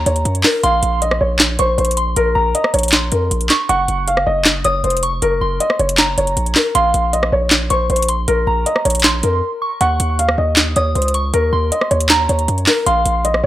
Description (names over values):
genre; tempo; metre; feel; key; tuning
hip hop, trap; 157 BPM; 4/4; half-time; Bb minor; A4 = 439 Hz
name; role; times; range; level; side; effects
felt-muted upright piano; melody; 0.0-13.5 s; Bb4 to Gb5; -18 LUFS; left 1 dB; low-pass filter
soft synth bell; second line; 0.0-13.2 s; Bb5 to Eb6; -21 LUFS; right 1 dB; chorus, phaser, analog delay
distorted 808-style bass; bass; 0.0-13.5 s; F1 to Gb2; -19 LUFS; equal; distortion
trap drum kit; drums; 0.1-13.4 s; handclaps, hi-hat, rim click, snare drum; -16 LUFS; equal; overdrive
room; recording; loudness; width
digital ambience; dry, gritty hardware recording; -13 LUFS; side -14 dB against mid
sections
0.0-3.7 A section; 3.7-13.5 A section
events
break 9.4-9.8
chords
0.0 Ebm7; 0.6 Bbmadd9; 3.7 Gb; 6.8 Bbmadd9; 9.8 Eb7(no3); 12.9 Bbsus2